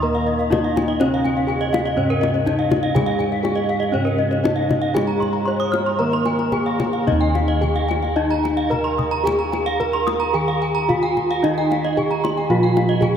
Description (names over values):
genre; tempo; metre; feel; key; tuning
Balinese gamelan; 110-123 BPM; 4/4; straight; Eb slendro; A4 = 438 Hz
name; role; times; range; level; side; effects
gamelan-type bronze metallophone; melody; 0.0-13.2 s; Db4-45c to Db5-45c; -22 LUFS; equal; none
gamelan-type bronze metallophone; accompaniment; 0.0-7.1, 11.4-13.2 s; Db3-45c to Bb3+25c; -26 LUFS; right 2 dB; none
gamelan-type bronze metallophone; arpeggios; 0.0-13.1 s; Db5-45c to F6+30c; -25 LUFS; left 4 dB; none
gamelan-type bronze metallophone; arpeggios; 0.0-13.0 s; Bb4+25c to Eb6; -25 LUFS; right 5 dB; none
gamelan-type bossed gongs; bass; 0.0-13.2 s; Eb2 to Ab4-35c; -25 LUFS; left 1 dB; none
kendang; percussion; 0.2-13.2 s; none; -27 LUFS; left 3 dB; none
room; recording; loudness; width
wet huge ambient reverb, RT60 7.5 s; in a vast, echoing space; -17 LUFS; side -8 dB against mid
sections
0.0-7.1 A section; 7.1-13.2 B section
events
none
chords
none